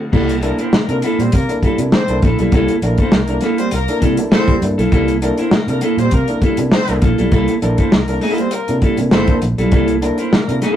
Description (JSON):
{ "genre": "funk", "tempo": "100 BPM", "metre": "4/4", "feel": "straight", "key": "C mixolydian", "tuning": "A4 = 440 Hz", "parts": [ { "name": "clean electric guitar", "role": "accompaniment", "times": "0.1-10.8 s", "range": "Bb3 to Bb4", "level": "-18 LUFS", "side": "equal", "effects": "none" }, { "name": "dark upright piano", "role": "stabs", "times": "0.1-10.6 s", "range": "C3 to A4", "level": "-22 LUFS", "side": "equal", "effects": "none" }, { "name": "vintage muted fingered electric bass", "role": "bass", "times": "0.1-10.6 s", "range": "G1 to C3", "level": "-20 LUFS", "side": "right 1 dB", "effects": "none" }, { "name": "warm soul drum kit", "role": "drums", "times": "0.1-10.8 s", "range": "crash cymbal, hi-hat, kick drum, snare drum", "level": "-16 LUFS", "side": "equal", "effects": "none" }, { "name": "warm horn section", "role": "second line", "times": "0.4-10.6 s", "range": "Bb3 to C5", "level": "-24 LUFS", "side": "left 2 dB", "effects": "none" } ], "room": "wet small room reverb, RT60 0.5 s", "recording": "rough rehearsal-room recording, tube saturation", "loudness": "-13 LUFS", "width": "side -10 dB against mid", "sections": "0.1-10.8 A section", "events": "none", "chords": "0.1 C13" }